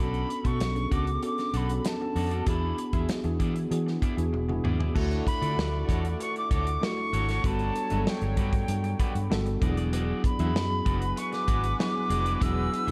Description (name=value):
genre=polished 1980s jazz-funk pop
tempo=96 BPM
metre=4/4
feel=straight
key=unclear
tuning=A4 = 441 Hz
part: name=jazz flute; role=melody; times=0.0-12.9 s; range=G5 to E6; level=-35 LUFS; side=equal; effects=none
part: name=mellow tine electric piano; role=accompaniment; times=0.0-12.9 s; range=F#3 to B5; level=-34 LUFS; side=equal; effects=analog chorus
part: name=electric guitar at the edge of break-up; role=riff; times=0.0-12.9 s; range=E4 to E5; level=-42 LUFS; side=equal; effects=subtle chorus
part: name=vintage muted fingered electric bass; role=bass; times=0.0-12.9 s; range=E1 to E3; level=-31 LUFS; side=equal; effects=none
part: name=modern studio drum kit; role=drums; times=0.1-12.9 s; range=crash cymbal, hi-hat, kick drum, snare drum, toms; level=-32 LUFS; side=equal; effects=none
part: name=warm horn section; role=second line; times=5.0-12.9 s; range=F#3 to D5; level=-43 LUFS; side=equal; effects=none
room=light reverb, small room ambience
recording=dark, warm production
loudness=-28 LUFS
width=mono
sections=0.0-5.0 A section; 5.0-12.9 B section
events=drum fill 4.3-5.0; tine electric piano fill 8.7-9.9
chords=0.0 Bm7; 2.5 E7; 5.0 Dmaj7; 7.4 Gmaj7; 9.6 E9